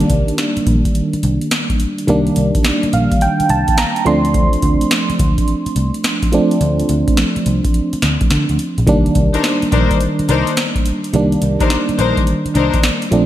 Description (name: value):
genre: R&B, new jack swing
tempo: 106 BPM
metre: 4/4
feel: swing 66% on 16ths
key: C dorian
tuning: A4 = 440 Hz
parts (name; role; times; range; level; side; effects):
- FM electric piano with tremolo; accompaniment; 0.0-13.3 s; Eb3 to C6; -16 LUFS; right 2 dB; none
- vintage muted picked electric bass; bass; 0.0-13.3 s; Bb1 to D3; -18 LUFS; equal; none
- booming analog drum machine; drums; 0.0-13.3 s; hi-hat, kick drum, snare drum; -18 LUFS; equal; none
- warm studio string section; stabs; 9.3-12.7 s; D4 to C5; -19 LUFS; left 7 dB; ping-pong delay
room: light reverb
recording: none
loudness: -13 LUFS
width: side -13 dB against mid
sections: 0.0-13.3 A section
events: FM electric piano fill 2.6-4.3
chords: 0.0 Cm9; 4.1 Dm7; 8.9 Cm9